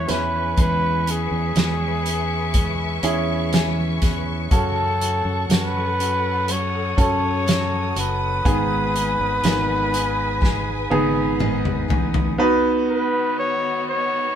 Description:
pop ballad; 61 BPM; 4/4; straight; C# minor; A4 = 440 Hz
clear flugelhorn; melody; 0.0-14.4 s; G#4 to C#5; -24 LUFS; equal
clear grand piano; accompaniment; 0.0-14.4 s; G#2 to B4; -24 LUFS; right 2 dB
rich studio string section; sustained chords; 0.0-14.4 s; D#3 to D#6; -30 LUFS; left 2 dB
picked steel-string acoustic guitar; arpeggios; 0.0-12.4 s; G#2 to B4; -30 LUFS; left 2 dB
fingered electric bass; bass; 0.0-12.4 s; F#1 to F#2; -26 LUFS; equal
loose indie drum kit; drums; 0.1-12.4 s; hi-hat, kick drum, snare drum, toms; -22 LUFS; equal
moderate studio reverb, RT60 0.6 s; band playing live in one room; -18 LUFS; side -9 dB against mid
0.0-12.4 A section; 12.4-14.4 B section
drum fill 10.4-12.4
0.1 C#m7/E; 4.5 F#m; 8.5 G#m; 12.4 B

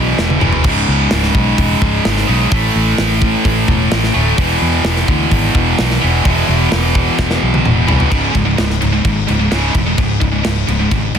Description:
heavy metal; 129 BPM; 4/4; straight; C# minor; A4 = 441 Hz
high-gain distorted guitar; riff; 0.0-11.2 s; C#2 to A3; -14 LUFS; equal; distortion
fingered electric bass; bass; 0.0-11.2 s; C#1 to E2; -17 LUFS; equal
tight metal drum kit; drums; 0.2-11.2 s; crash cymbal, hi-hat, kick drum, snare drum, toms; -18 LUFS; equal; soft clipping on kick, soft clipping on snare
small room ambience; dense, heavily limited modern master; -11 LUFS; side -8 dB against mid
0.0-8.1 A section; 8.1-11.2 B section
drum fill 0.2-0.7, 7.2-8.1
0.0 E5; 0.7 C#5; 2.5 A5; 4.4 E5; 8.1 C#5

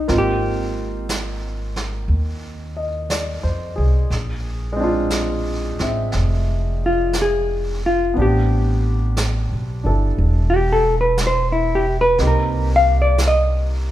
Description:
jazz ballad; 60 BPM; 4/4; swing 67% on 8ths; A4 = 436 Hz
hollow-body jazz guitar; melody; 0.0-13.9 s; Eb4 to F5; -18 LUFS; left 1 dB
warm concert grand piano; accompaniment; 0.0-13.9 s; Ab3 to E5; -26 LUFS; right 1 dB
upright bass; bass; 0.0-13.9 s; E1 to F2; -20 LUFS; equal
vintage brush drum kit; drums; 0.1-13.9 s; brushed snare drum, hi-hat, snare drum; -30 LUFS; right 2 dB
moderate recital hall reverb, RT60 1.6 s; recorded in a church or concert hall; -17 LUFS; side -13 dB against mid
0.0-13.9 A section
hollow-body jazz guitar solo 0.0-13.9
0.1 Ab6; 4.1 Bb9; 8.2 Am11; 12.2 Cm7

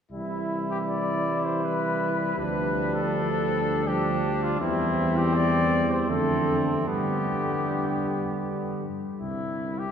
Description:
classical, brass quintet; 79 BPM; 3/4; rubato; C major; A4 = 440 Hz
mellow trumpet; melody; 0.1-9.9 s; E4 to D5; -29 LUFS; left 3 dB
clear trumpet; second line; 0.1-8.9 s; B3 to E4; -31 LUFS; right 3 dB
dark trombone; accompaniment; 0.1-8.9 s; D3 to F3; -31 LUFS; equal
mellow French horn; accompaniment; 0.1-8.9 s; G3 to A3; -33 LUFS; left 1 dB
dark tuba; bass; 0.1-9.9 s; C2 to G2; -30 LUFS; right 1 dB
wet cathedral reverb, RT60 5.2 s; recorded in a church or concert hall; -24 LUFS; side -8 dB against mid
0.1-9.9 A section
0.1 C; 2.4 G5/D; 4.6 C/E; 6.1 Dm7/F; 6.9 G; 9.2 C

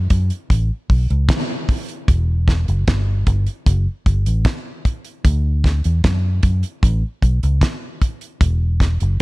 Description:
dub reggae; 76 BPM; 4/4; straight; E dorian; A4 = 439 Hz
vintage muted fingered electric bass; bass; 0.0-9.2 s; E1 to F#2; -17 LUFS; equal
damped 70s drum kit; drums; 0.1-9.2 s; hi-hat, kick drum, snare drum; -17 LUFS; equal
little or no reverb; -16 LUFS; side -22 dB against mid
0.0-2.1 A section; 2.1-9.2 A section

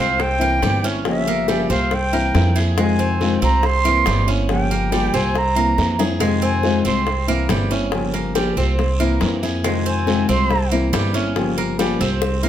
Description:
latin, Cuban son and guajira; 140 BPM; 4/4; straight; A4 = 442 Hz
silver concert flute; melody; 0.0-7.3, 9.9-10.7 s; E5 to C6; -22 LUFS; right 2 dB; plate reverb
nylon-string guitar; accompaniment; 0.0-12.5 s; C3 to G4; -22 LUFS; left 3 dB
Cuban tres; arpeggios; 0.0-12.5 s; G3 to Ab4; -24 LUFS; right 3 dB
upright bass; bass; 0.0-12.5 s; G1 to F2; -21 LUFS; right 1 dB
bongos; percussion; 0.2-12.3 s; -27 LUFS; left 5 dB
guiro; percussion; 0.2-12.5 s; -33 LUFS; right 5 dB
moderate studio reverb, RT60 0.9 s; -16 LUFS; side -10 dB against mid
0.0-12.5 A section
flute solo 0.0-12.5; drum fill 5.8-6.2, 12.2
0.2 C7; 1.1 Gm7b5; 1.9 C7; 2.8 Fm7; 3.6 C7; 4.5 Gm7b5; 5.4 C7; 6.2 Fm7; 7.1 C7; 7.9 Gm7b5; 8.8 C7; 9.6 Fm7; 10.5 C7; 11.4 Gm7b5

